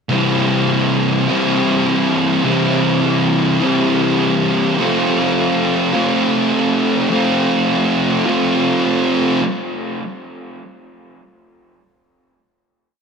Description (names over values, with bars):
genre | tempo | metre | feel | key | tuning
rock | 52 BPM (dotted quarters) | 6/8 | straight | C major | A4 = 442 Hz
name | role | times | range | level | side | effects
thick fuzz guitar | solo | 0.1-9.4 s | C3 to F4 | -14 LUFS | equal | distortion, analog delay
room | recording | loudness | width
wet plate reverb, RT60 2.8 s | dreamy mix soaked in reverb | -14 LUFS | side -6 dB against mid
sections
0.1-9.4 A section; 9.4-11.8 final hit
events
none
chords
0.1 C; 4.8 F; 9.4 N.C.